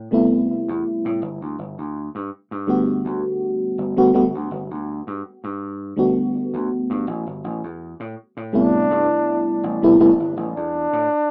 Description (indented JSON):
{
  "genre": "vaporwave",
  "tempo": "82 BPM",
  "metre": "4/4",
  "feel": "swing 53% on 16ths",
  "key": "G major",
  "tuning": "A4 = 444 Hz",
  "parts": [
    { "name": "vintage slap bass", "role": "bass", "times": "0.0-11.1 s", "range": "G1 to A2", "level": "-31 LUFS", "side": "equal", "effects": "none" },
    { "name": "mellow FM electric piano", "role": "accompaniment", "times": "0.1-10.1 s", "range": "C3 to F#4", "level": "-20 LUFS", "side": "equal", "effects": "lush chorus, analog delay" },
    { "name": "warm flugelhorn", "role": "melody", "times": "8.5-11.3 s", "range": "D4", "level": "-24 LUFS", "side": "equal", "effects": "tape echo" }
  ],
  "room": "moderate lush hall reverb, RT60 2.5 s",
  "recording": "rough home demo mix, cassette tape, small speaker sound",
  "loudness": "-21 LUFS",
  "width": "mono",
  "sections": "0.0-11.3 A section",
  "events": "none",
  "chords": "0.0 Am9; 1.2 Gmaj7; 7.1 Am9"
}